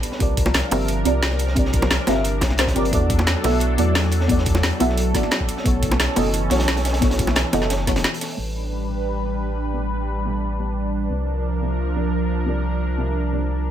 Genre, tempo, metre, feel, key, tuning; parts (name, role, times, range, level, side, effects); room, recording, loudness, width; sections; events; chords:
liquid drum and bass; 176 BPM; 4/4; straight; A4 = 440 Hz
deep mellow chord stab; accompaniment; 0.0-13.7 s; B3 to E5; -24 LUFS; equal; chorus, phaser, ping-pong delay
lush unison pad; sustained chords; 0.0-13.7 s; E3 to B4; -26 LUFS; equal; chorus, phaser, sidechain pumping
crunchy breakbeat drum kit; drums; 0.0-8.3 s; hi-hat, snare drum; -30 LUFS; equal; high-pass filter on hats, high-pass filter on snare, high-pass filter on room
garage drum kit; drums; 0.0-8.3 s; hi-hat, snare drum; -24 LUFS; equal; overdrive, low-pass filter on hats, low-pass filter on snare
warm sub bass; bass; 0.2-13.7 s; F#1 to E2; -23 LUFS; equal
electronic kick drum; drums; 0.2-7.9 s; -22 LUFS; equal
bongos; percussion; 0.5-7.6 s; -26 LUFS; right 1 dB
light reverb, small room ambience; -18 LUFS; side -10 dB against mid
0.0-8.4 A section; 8.4-13.7 B section
break 8.0-8.4; filter sweep on synth stab 8.4-13.7
0.2 C9sus4; 2.9 E9sus4; 5.7 B9sus4; 8.4 A9sus4; 11.1 C9sus4